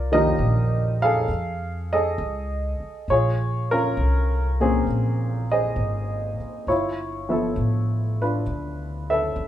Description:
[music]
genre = jazz ballad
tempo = 67 BPM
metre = 4/4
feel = swing 69% on 8ths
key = unclear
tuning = A4 = 436 Hz
[part]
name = warm baby grand piano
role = accompaniment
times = 0.0-9.5 s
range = Bb2 to F5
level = -23 LUFS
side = equal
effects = none
[part]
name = upright bass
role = bass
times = 0.0-9.5 s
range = G1 to F2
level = -24 LUFS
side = equal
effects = none
[sound]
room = light reverb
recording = band playing live in one room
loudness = -21 LUFS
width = side -11 dB against mid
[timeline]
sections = 0.0-9.5 A section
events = none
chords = 0.0 Cm7; 1.3 F7alt; 3.1 Bbm9; 6.7 G13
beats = 0.39 1.28 2.18 | 3.08 3.97 4.87 5.77 | 6.67 7.57 8.47 9.37

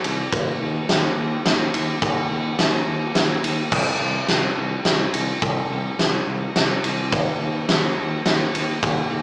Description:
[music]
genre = post-rock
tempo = 106 BPM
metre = 3/4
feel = straight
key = unclear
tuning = A4 = 441 Hz
[part]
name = fuzz fingered electric bass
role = bass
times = 0.0-9.2 s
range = C2 to Eb2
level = -28 LUFS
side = equal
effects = overdrive
[part]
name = huge arena drum kit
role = drums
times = 0.0-9.0 s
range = crash cymbal, kick drum, ride cymbal, snare drum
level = -23 LUFS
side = equal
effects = none
[sound]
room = light reverb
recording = band playing live in one room, small speaker sound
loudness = -22 LUFS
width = mono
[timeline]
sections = 0.0-9.2 A section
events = none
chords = none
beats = | 0.33 0.89 1.46 | 2.03 2.59 3.16 | 3.73 4.29 4.86 | 5.42 5.99 6.56 | 7.12 7.69 8.26 | 8.83

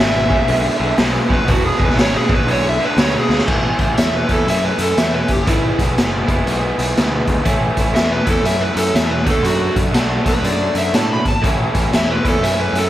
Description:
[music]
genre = blues rock power trio and southern rock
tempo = 121 BPM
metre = 4/4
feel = swing 63% on 8ths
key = unclear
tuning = A4 = 440 Hz
[part]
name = overdriven slide guitar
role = melody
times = 0.0-12.9 s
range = E4 to B5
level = -20 LUFS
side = right 1 dB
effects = none
[part]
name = tonewheel organ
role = sustained chords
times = 0.0-12.9 s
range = E3 to B4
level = -32 LUFS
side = right 3 dB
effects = none
[part]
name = raw garage guitar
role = riff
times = 0.0-12.9 s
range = E2 to F#4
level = -20 LUFS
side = equal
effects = overdrive
[part]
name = growling picked electric bass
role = bass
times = 0.0-12.9 s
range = E1 to A2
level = -22 LUFS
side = equal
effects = overdrive
[part]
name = raw garage drum kit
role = drums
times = 0.3-12.8 s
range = crash cymbal, hi-hat, kick drum, snare drum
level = -17 LUFS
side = equal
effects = none
[sound]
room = light reverb, small room ambience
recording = none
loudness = -14 LUFS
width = side -13 dB against mid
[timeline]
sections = 0.0-3.5 A section; 3.5-12.9 B section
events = electric slide guitar solo 0.0-3.5; drum fill 3.2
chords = 0.0 E; 3.5 A; 5.5 E; 7.5 A; 9.2 D; 11.4 A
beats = 0.49 0.99 | 1.49 1.98 2.48 2.98 | 3.48 3.97 4.47 4.97 | 5.47 5.96 6.46 6.96 | 7.46 7.95 8.45 8.95 | 9.45 9.94 10.44 10.94 | 11.44 11.93 12.43

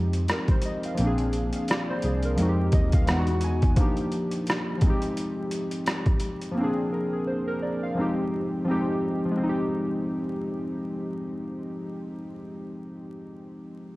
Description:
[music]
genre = lo-fi hip hop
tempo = 86 BPM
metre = 4/4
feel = swing 58% on 16ths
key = F dorian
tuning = A4 = 440 Hz
[part]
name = warbly lo-fi synth keys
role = accompaniment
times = 0.0-14.0 s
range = E3 to G#5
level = -27 LUFS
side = equal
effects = chorus, cassette tape
[part]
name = mellow tine electric piano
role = bass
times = 0.0-3.7 s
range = Bb1 to F2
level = -26 LUFS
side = equal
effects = medium stereo tremolo
[part]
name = boom bap sampler-style drum kit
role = drums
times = 0.1-6.6 s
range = hi-hat, kick drum, rim click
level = -24 LUFS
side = equal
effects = overdrive
[sound]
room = light reverb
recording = vinyl crackle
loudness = -24 LUFS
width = side -20 dB against mid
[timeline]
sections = 0.0-9.4 A section; 9.4-12.1 B section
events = synth keys fill 2.4-3.8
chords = 0.0 Fm9; 1.0 Bb9; 2.4 Fm9; 3.1 Emaj9; 3.8 Ebmaj9; 4.8 Fm9; 6.6 Bb9; 8.0 Fm9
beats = 0.28 | 0.98 1.68 2.38 3.07 | 3.77 4.47 5.17 5.86 | 6.56 7.26 7.96 8.65 | 9.35 10.05 10.75 11.45

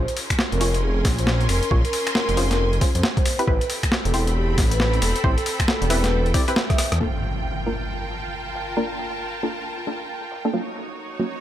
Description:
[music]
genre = UK garage, two-step garage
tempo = 136 BPM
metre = 4/4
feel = swing 62% on 16ths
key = unclear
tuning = A4 = 440 Hz
[part]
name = vibraphone with soft mallets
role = melody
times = 0.0-6.9 s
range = G4 to E5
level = -29 LUFS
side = equal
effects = auto-pan, dub echo
[part]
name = punchy chord stab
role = stabs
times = 0.0-11.4 s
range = Gb3 to D5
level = -27 LUFS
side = equal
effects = chorus, dub echo
[part]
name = dark detuned saw bass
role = bass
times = 0.0-7.0 s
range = E1 to F2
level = -22 LUFS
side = equal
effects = none
[part]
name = clear symphonic string section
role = texture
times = 0.0-11.4 s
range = C4 to C6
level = -30 LUFS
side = right 1 dB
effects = sidechain pumping
[part]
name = boom bap sampler-style drum kit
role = drums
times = 0.1-11.3 s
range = finger snaps, hi-hat, rim click, snare drum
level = -24 LUFS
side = equal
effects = overdrive, low-pass filter on snare, low-pass filter on hats, low-pass filter on room
[part]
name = electronic kick drum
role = drums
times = 0.3-6.8 s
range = none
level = -22 LUFS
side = equal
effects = overdrive
[part]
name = impact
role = sound effects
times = 7.0-8.8 s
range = none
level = -30 LUFS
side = equal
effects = none
[sound]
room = light reverb, digital ambience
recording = none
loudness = -20 LUFS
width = side -12 dB against mid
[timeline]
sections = 0.0-7.0 A section; 7.0-11.4 B section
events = filter sweep on synth stab 0.0-7.0; drum fill 6.7-7.0; impact 7.0-8.8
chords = 0.0 Bbm9; 3.3 Am9; 7.0 Gm9; 10.5 Ebm9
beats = 0.39 0.83 1.27 | 1.71 2.15 2.59 3.03 | 3.48 3.92 4.36 4.80 | 5.24 5.68 6.12 6.56 | 7.00 7.45 7.89 8.33 | 8.77 9.21 9.65 10.09 | 10.53 10.97

